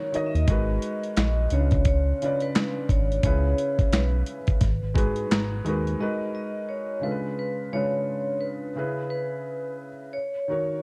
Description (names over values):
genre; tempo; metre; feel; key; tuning
lo-fi hip hop; 87 BPM; 4/4; swing 62% on 16ths; G# minor; A4 = 441 Hz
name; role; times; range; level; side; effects
vibraphone with hard mallets; melody; 0.0-10.8 s; B4 to E5; -33 LUFS; equal; low-pass filter
felt-muted upright piano; accompaniment; 0.0-10.8 s; C#3 to A#5; -32 LUFS; equal; low-pass filter
dusty soul sampler-style drum kit; drums; 0.1-6.0 s; handclaps, hi-hat, kick drum, snare drum; -26 LUFS; equal; overdrive
smooth synth bass; bass; 0.3-6.0 s; G#1 to G#2; -27 LUFS; equal; none
room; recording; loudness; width
light reverb, small room ambience; dark, warm production; -26 LUFS; mono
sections
0.0-6.0 A section; 6.0-10.8 B section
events
felt piano fill 5.0-6.0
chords
0.5 G#m9; 1.5 C#7b9; 3.2 E6; 4.6 G#m9; 7.0 C#7b9; 8.8 C#m7; 10.1 D#m7